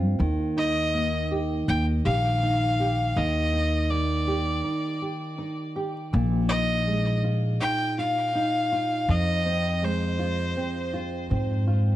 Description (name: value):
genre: folktronica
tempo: 81 BPM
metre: 4/4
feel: straight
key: Eb major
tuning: A4 = 440 Hz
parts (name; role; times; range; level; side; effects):
- nylon-string guitar; arpeggios; 0.0-12.0 s; F2 to G4; -28 LUFS; right 1 dB; digital delay
- upright bass; bass; 0.0-12.0 s; Bb1 to Ab2; -25 LUFS; equal; none
- rich violin; melody; 0.6-11.0 s; C5 to G5; -27 LUFS; left 2 dB; digital delay
room: moderate studio reverb, RT60 0.6 s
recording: vinyl crackle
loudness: -23 LUFS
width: side -14 dB against mid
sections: 0.0-12.0 A section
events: none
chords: 0.2 Eb; 6.1 Bb7sus4; 9.1 Fm7